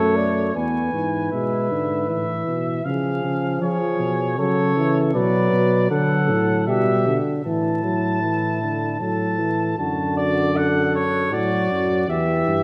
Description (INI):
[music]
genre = classical, imitative canzona for brass ensemble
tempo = 78 BPM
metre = 3/4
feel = straight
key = D major from 5.2 s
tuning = A4 = 440 Hz
[part]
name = clear trumpet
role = melody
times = 0.0-12.6 s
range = C#5 to A5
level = -28 LUFS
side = equal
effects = none
[part]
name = mellow flugelhorn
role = second line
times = 0.0-12.6 s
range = E4 to D5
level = -28 LUFS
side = equal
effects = none
[part]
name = dark euphonium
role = accompaniment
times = 0.0-12.6 s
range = D3 to B3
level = -26 LUFS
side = equal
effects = none
[part]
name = mellow tuba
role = bass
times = 0.0-12.6 s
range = E2 to E#3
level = -27 LUFS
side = equal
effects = none
[sound]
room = moderate concert hall reverb, RT60 2.2 s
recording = vinyl crackle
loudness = -21 LUFS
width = mono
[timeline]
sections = 0.6-9.8 A section; 9.8-12.6 B section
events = none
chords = 0.0 F#m; 0.6 E; 2.1 A5; 2.9 C#; 4.4 F#m/C#; 5.2 Bm; 6.7 G/B; 7.5 Asus4; 9.0 A5; 9.8 D/F#; 11.3 D/A; 12.1 Em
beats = | 0.56 1.33 2.10 | 2.86 3.63 4.39 | 5.16 5.92 6.69 | 7.46 8.23 9.01 | 9.79 10.56 11.32 | 12.09